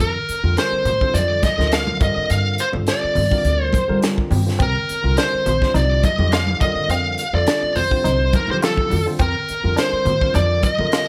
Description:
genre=electric jazz fusion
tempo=104 BPM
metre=4/4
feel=swing 54% on 16ths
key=unclear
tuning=A4 = 440 Hz
part: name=smooth overdriven lead guitar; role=melody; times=0.0-11.1 s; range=A4 to F5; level=-22 LUFS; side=equal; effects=none
part: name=upright bass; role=bass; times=0.0-11.1 s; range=Bb1 to G3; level=-23 LUFS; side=equal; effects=none
part: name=crisp fusion drum kit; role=drums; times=0.0-11.1 s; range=hi-hat, kick drum, snare drum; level=-25 LUFS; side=equal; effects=none
part: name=barky tine electric piano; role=accompaniment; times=0.4-11.1 s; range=D3 to G5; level=-30 LUFS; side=equal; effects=phaser
part: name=congas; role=percussion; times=0.9-10.9 s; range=none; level=-29 LUFS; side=equal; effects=none
part: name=clean electric guitar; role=stabs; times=4.6-11.1 s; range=C4 to F4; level=-30 LUFS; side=equal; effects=lush chorus
room=small room ambience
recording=none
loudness=-19 LUFS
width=mono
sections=0.0-11.1 A section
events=tine electric piano fill 3.7-4.6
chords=0.0 Bbmaj9/F; 4.6 C7sus2; 6.6 Fsus4; 9.2 Bbadd9/F

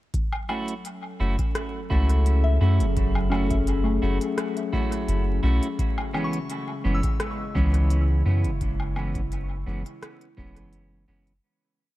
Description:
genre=ambient dub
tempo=85 BPM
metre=4/4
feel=swing 53% on 16ths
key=F# minor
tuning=A4 = 441 Hz
part: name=warbly tape-like pad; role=sustained chords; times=0.6-11.4 s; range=C#3 to A4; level=-32 LUFS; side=left 2 dB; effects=chorus, built-in reverb
part: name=electronic kick drum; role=drums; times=0.1-10.5 s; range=none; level=-29 LUFS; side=equal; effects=none
part: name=organic electronic drum kit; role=drums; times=0.1-11.4 s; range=hi-hat, rim click, woodblock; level=-35 LUFS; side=left 1 dB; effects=dub echo
part: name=clean electric guitar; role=stabs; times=0.5-11.3 s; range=E3 to F#4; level=-31 LUFS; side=right 2 dB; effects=dub echo
part: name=soft dub sub bass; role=bass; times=1.2-11.4 s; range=E1 to F#2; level=-22 LUFS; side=equal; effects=none
part: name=soft synth bell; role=arpeggios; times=2.4-11.5 s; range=A3 to E6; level=-33 LUFS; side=left 2 dB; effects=chorus, dub echo
room=light reverb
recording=echo-heavy mix, vinyl crackle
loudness=-22 LUFS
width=side -16 dB against mid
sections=0.1-11.4 groove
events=fade-out 7.7-11.4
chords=0.1 F#m7; 5.8 C#m7/F#

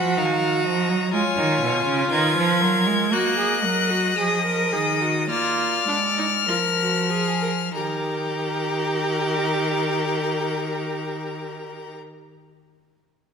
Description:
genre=classical, baroque-style fugue for string quartet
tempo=46-64 BPM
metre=4/4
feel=straight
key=Eb minor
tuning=A4 = 440 Hz
part: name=clear violin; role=melody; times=0.0-12.0 s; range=Ab5 to Ab6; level=-26 LUFS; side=left 9 dB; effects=none
part: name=rich violin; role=second line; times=0.0-12.0 s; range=Ab4 to Gb5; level=-28 LUFS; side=left 2 dB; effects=none
part: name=rich viola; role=accompaniment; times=0.0-11.9 s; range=D4 to Bb4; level=-26 LUFS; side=right 3 dB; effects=none
part: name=rich cello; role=bass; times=0.0-12.0 s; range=Cb3 to Bb3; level=-25 LUFS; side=right 2 dB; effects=none
room=wet scoring stage reverb, RT60 2.0 s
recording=minimal, uncompressed stereo recording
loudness=-20 LUFS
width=side -6 dB against mid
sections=0.0-7.7 A section; 7.7-12.9 B section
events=slowing down 0.0-7.7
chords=0.0 Ebm; 1.1 Fm7b5; 3.1 Ebm; 5.3 Bb7; 7.7 Eb

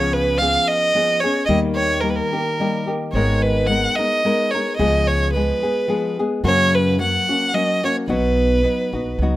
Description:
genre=mexican folk, mariachi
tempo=109 BPM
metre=3/4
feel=swing 53% on 8ths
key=unclear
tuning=A4 = 440 Hz
part: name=rich violin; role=melody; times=0.0-9.2 s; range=A#4 to F#5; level=-19 LUFS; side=right 1 dB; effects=plate reverb
part: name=nylon-string guitar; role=accompaniment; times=0.0-9.4 s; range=F#2 to A#4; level=-21 LUFS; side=left 2 dB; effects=plate reverb
part: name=upright bass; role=bass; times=0.0-9.4 s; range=G#1 to F#2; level=-23 LUFS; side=right 1 dB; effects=none
room=moderate studio ambience, RT60 0.5 s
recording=rough home demo mix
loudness=-16 LUFS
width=side -15 dB against mid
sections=0.0-9.4 A section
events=none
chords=0.0 C#7; 1.5 D#; 3.1 G#madd9; 4.8 C#7; 6.4 F#; 8.1 B

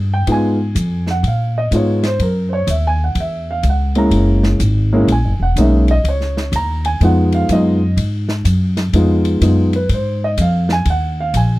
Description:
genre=jazz, small-group swing and bop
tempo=125 BPM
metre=4/4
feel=swing 66% on 8ths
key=Db mixolydian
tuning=A4 = 440 Hz
part: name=upright bass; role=bass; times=0.0-11.6 s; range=Fb1 to Bb2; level=-15 LUFS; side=equal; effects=none
part: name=warm baby grand piano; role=accompaniment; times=0.1-11.6 s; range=Ab3 to Bb5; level=-17 LUFS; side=equal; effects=none
part: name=open jazz drum kit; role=drums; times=0.3-11.5 s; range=hi-hat, kick drum, ride cymbal, snare drum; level=-26 LUFS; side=equal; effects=none
room=little or no reverb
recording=dry, close 1970s-style studio recording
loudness=-13 LUFS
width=side -18 dB against mid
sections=0.0-11.6 A section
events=none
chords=0.0 Db9; 2.2 Gb9; 6.1 Db9; 9.9 Ab9

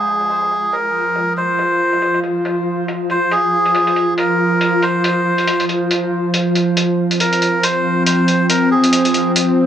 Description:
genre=deep dubstep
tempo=139 BPM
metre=4/4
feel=swing 57% on 16ths, half-time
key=F minor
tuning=A4 = 440 Hz
part: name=melodica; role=melody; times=0.0-9.3 s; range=Ab4 to C5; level=-17 LUFS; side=equal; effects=dub echo
part: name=bowed-like drone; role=sustained chords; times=0.0-9.7 s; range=F3 to F4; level=-17 LUFS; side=equal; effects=built-in reverb
part: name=electronic hi-hat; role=drums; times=0.2-9.5 s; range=none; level=-22 LUFS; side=left 1 dB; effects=low-pass filter on hats, low-pass filter on snare, low-pass filter on cymbals, low-pass filter on room
room=wet echo chamber reverb, RT60 1.8 s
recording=dry, gritty hardware recording, cassette tape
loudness=-14 LUFS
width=side -10 dB against mid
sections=0.0-9.7 A section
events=filter sweep on drum 0.0-9.7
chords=0.0 F5

